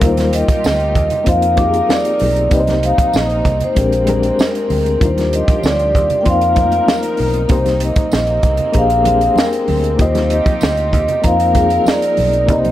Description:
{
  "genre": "lush 1970s-style soul",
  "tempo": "96 BPM",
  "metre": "4/4",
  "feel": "straight",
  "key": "unclear",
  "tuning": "A4 = 440 Hz",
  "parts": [
    { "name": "vibraphone with soft mallets", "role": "melody", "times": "0.0-12.7 s", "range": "Bb4 to G5", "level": "-16 LUFS", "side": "equal", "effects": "none" },
    { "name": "reed electric piano", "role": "accompaniment", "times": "0.0-12.7 s", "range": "G3 to Eb5", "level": "-20 LUFS", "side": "left 3 dB", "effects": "fast tremolo" },
    { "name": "warm studio string section", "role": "sustained chords", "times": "0.0-12.7 s", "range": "C3 to Bb4", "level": "-26 LUFS", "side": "right 1 dB", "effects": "none" },
    { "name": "vintage muted fingered electric bass", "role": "bass", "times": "0.0-12.7 s", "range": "Bb1 to F2", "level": "-19 LUFS", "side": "equal", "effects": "none" },
    { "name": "compact cocktail drum kit", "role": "drums", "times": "0.0-12.7 s", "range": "hi-hat, kick drum, snare drum", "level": "-18 LUFS", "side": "right 1 dB", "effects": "none" },
    { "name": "congas", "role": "percussion", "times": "0.0-12.7 s", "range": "none", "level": "-27 LUFS", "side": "right 5 dB", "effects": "none" },
    { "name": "large celesta", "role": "texture", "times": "0.0-2.2, 6.3-11.9 s", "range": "F5 to D6", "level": "-31 LUFS", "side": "equal", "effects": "none" },
    { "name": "tambourine", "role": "percussion", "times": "0.6-12.0 s", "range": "none", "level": "-33 LUFS", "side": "right 8 dB", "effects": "none" }
  ],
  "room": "light reverb, small room ambience",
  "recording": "none",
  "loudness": "-12 LUFS",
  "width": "side -13 dB against mid",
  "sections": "0.0-12.7 A section",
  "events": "none",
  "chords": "0.0 Ebmaj9; 1.3 F7sus4; 2.5 Cm7; 3.8 Bb13; 5.0 Ebmaj9; 6.3 F7sus4; 7.5 Cm7; 8.8 Bb13; 10.0 Ebmaj9; 11.2 F7sus4"
}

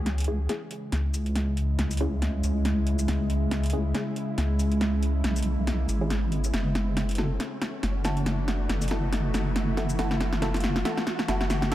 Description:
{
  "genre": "deep dubstep",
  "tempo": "139 BPM",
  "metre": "4/4",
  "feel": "swing 56% on 16ths, half-time",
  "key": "C# minor",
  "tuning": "A4 = 442 Hz",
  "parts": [
    { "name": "bowed-like drone", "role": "sustained chords", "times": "0.0-11.7 s", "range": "C#3 to F#4", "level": "-31 LUFS", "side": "equal", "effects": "built-in reverb" },
    { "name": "deep soft wobble bass", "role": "bass", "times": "0.0-11.7 s", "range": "F#1 to C#2", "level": "-26 LUFS", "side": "equal", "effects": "chorus, tube saturation" },
    { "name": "riser", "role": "sound effects", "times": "0.0-11.7 s", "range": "none", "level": "-39 LUFS", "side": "right 1 dB", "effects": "none" },
    { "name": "deep house drum kit", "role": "drums", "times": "0.1-11.7 s", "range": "hi-hat, shaker, snare drum", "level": "-31 LUFS", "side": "equal", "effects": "overdrive" },
    { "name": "filtered dub chord stab", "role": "stabs", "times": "0.3-11.7 s", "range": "C#4 to A4", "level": "-35 LUFS", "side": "equal", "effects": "phaser, dub echo" }
  ],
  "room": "light reverb",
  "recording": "none",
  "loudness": "-24 LUFS",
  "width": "side -14 dB against mid",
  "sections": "0.0-11.7 A section",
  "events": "build-up 0.0-11.7; drum fill 0.0-11.7; riser 0.0-11.7; filter sweep on synth stab 0.0-11.7; filter sweep on synth drone 0.0-11.7",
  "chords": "0.0 C#m; 6.5 F#m7"
}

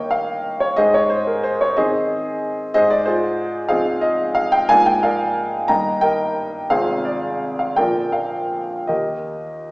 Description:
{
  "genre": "classical, romantic character piece for solo piano",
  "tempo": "50-63 BPM (dotted quarters)",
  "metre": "6/8",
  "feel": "rubato",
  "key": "Eb major",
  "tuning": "A4 = 441 Hz",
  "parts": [
    { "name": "warm grand piano", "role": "solo", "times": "0.0-9.7 s", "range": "Ab1 to Bb5", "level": "-17 LUFS", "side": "equal", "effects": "none" }
  ],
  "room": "wet recital hall reverb, RT60 1.3 s",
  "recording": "recorded in a church or concert hall, small speaker sound",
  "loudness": "-17 LUFS",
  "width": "side -23 dB against mid",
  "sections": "0.0-9.7 A section",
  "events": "none",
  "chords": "0.0 Eb7/G; 0.8 Ab; 2.7 Fm7/Ab; 4.7 Bb7/Ab; 5.7 Eb/G; 6.7 Fm/Ab; 7.8 Bb; 8.9 Eb"
}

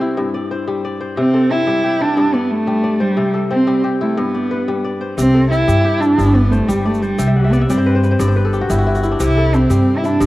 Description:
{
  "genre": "west african traditional, West African string and xylophone music",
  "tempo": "120 BPM (dotted quarters)",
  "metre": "12/8",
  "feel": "straight",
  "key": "C lydian",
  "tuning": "A4 = 440 Hz",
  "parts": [
    { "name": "dark cello", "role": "melody", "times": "0.0-10.3 s", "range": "G3 to E4", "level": "-16 LUFS", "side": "right 1 dB", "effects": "cassette tape" },
    { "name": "kora", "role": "arpeggios", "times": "0.0-10.3 s", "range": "G2 to G5", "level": "-20 LUFS", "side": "left 3 dB", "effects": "analog delay" },
    { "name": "upright bass", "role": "bass", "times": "5.2-10.3 s", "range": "G1 to G2", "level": "-16 LUFS", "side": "equal", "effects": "none" },
    { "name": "egg shaker", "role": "percussion", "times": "5.2-10.3 s", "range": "none", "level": "-36 LUFS", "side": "right 5 dB", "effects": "none" }
  ],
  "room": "light reverb, small room ambience",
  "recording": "home recording on cassette",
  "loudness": "-13 LUFS",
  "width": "side -17 dB against mid",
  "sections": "0.0-5.2 A section; 5.2-10.3 A section",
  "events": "kora fill 7.2-9.2",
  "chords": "0.2 G5; 1.2 C; 2.2 G5; 3.2 C; 4.2 G; 5.2 C; 6.2 G5; 7.2 C5; 8.2 Gmaj13; 9.2 C"
}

